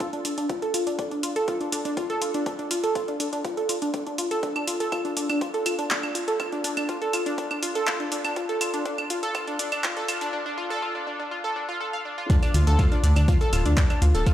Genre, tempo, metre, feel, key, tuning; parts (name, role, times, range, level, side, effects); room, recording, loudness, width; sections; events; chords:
melodic techno; 122 BPM; 4/4; straight; D minor; A4 = 440 Hz
analog pluck; arpeggios; 0.0-14.3 s; D4 to A5; -26 LUFS; equal; chorus, sidechain pumping, tape echo
deep house drum kit; drums; 0.0-14.3 s; claves, handclaps, hi-hat; -30 LUFS; right 1 dB; sidechain pumping on hats, sidechain pumping on perc
electronic kick drum; drums; 0.0-14.3 s; -23 LUFS; equal; high-pass filter on kick
vintage drum kit; drums; 12.3-14.3 s; hi-hat, snare drum; -42 LUFS; equal
dark detuned saw bass; bass; 12.5-14.2 s; D1 to D2; -19 LUFS; equal; sidechain pumping
moderate huge ambient reverb, RT60 4.4 s; played on a big sound system in a bare room, stone room reverb, high-pass filter; -23 LUFS; side -11 dB against mid
0.0-12.3 A section; 12.3-14.3 B section
build-up 0.0-12.3; filter sweep on synth pluck 0.0-12.3; filter sweep 0.0-12.3; break 10.3-12.3; drop 12.3-14.3
0.0 Dm